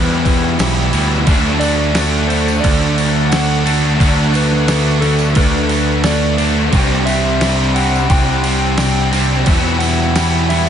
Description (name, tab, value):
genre	rock, shoegaze and dream pop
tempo	88 BPM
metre	4/4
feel	straight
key	D mixolydian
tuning	A4 = 441 Hz
part	soft struck synth lead	melody	0.0-10.7 s	A4 to G5	-23 LUFS	left 1 dB	chorus, tape echo
part	crunchy overdriven guitar	riff	0.0-10.7 s	E2 to G4	-21 LUFS	right 8 dB	reverse reverb
part	distorted electric guitar	riff	0.0-10.7 s	E2 to D4	-21 LUFS	equal	distortion
part	overdriven electric guitar	riff	0.0-10.7 s	C3 to E4	-21 LUFS	left 8 dB	analog chorus
part	growling picked electric bass	bass	0.0-10.7 s	B1 to E2	-16 LUFS	equal	overdrive
part	tambourine	percussion	0.1-10.7 s	none	-35 LUFS	right 14 dB	none
part	detuned 8-bit digital drum machine	drums	0.3-10.7 s	crash cymbal, kick drum, snare drum	-19 LUFS	right 1 dB	none
room	moderate huge ambient reverb, RT60 4.1 s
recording	dreamy mix soaked in reverb, nothing above 10.7 kHz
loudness	-12 LUFS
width	side -8 dB against mid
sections	0.0-10.7 A section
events	none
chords	0.0 Em; 1.3 D; 6.7 Csus2; 9.5 Emadd9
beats	0.59 | 1.27 1.96 2.64 3.32 | 4.00 4.68 5.37 6.05 | 6.73 7.42 8.10 8.79 | 9.47 10.16